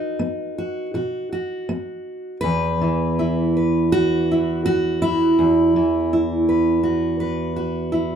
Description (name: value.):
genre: folk, solo fingerstyle acoustic guitar.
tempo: 82 BPM.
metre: 4/4.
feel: rubato.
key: unclear.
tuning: A4 = 440 Hz.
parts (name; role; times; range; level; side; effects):
fingerpicked steel-string acoustic guitar; solo; 0.0-8.2 s; E2 to B4; -18 LUFS; right 1 dB; none.
room: moderate small room reverb, RT60 0.6 s.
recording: heard from further back in the room.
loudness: -18 LUFS.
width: side -8 dB against mid.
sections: 0.0-2.4 A section; 2.4-8.2 B section.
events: none.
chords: 0.0 B; 2.4 Esus2.